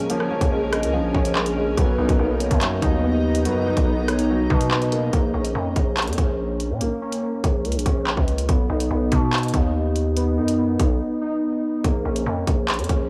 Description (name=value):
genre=hip hop, drill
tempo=143 BPM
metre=4/4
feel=half-time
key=Bb phrygian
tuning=A4 = 440 Hz
part: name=dark grand piano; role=accompaniment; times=0.0-5.2 s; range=F3 to B3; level=-28 LUFS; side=equal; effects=none
part: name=granular cloud pad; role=sustained chords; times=0.0-5.1 s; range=Db4 to A#5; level=-35 LUFS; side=equal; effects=built-in reverb
part: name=warbly lo-fi synth keys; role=arpeggios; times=0.0-13.1 s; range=Bb3 to D#4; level=-28 LUFS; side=equal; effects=chorus, low-pass filter, digital delay
part: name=hollow clarinet-like synth lead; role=second line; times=0.1-5.1 s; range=B4 to Eb5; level=-32 LUFS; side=equal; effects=chorus, digital delay
part: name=drill drum kit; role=drums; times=0.1-13.0 s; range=handclaps, hi-hat, kick drum, rim click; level=-24 LUFS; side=equal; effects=none
part: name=growling 808-style bass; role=bass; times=0.4-13.1 s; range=Bb1 to B2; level=-26 LUFS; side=equal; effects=none
room=little or no reverb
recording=blown-out, overdriven recording, overdrive, small room ambience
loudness=-21 LUFS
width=mono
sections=0.0-5.1 A section; 5.1-13.1 B section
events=break 11.0-11.8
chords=0.0 Bbm7; 1.8 Bmaj7; 5.1 Bbm; 8.5 B; 11.8 Bbm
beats=| 0.10 0.52 0.94 1.35 | 1.77 2.19 2.61 3.03 | 3.45 3.87 4.29 4.71 | 5.13 5.55 5.97 6.39 | 6.81 7.23 7.65 8.07 | 8.49 8.91 9.33 9.75 | 10.17 10.59 11.01 11.43 | 11.85 12.26 12.68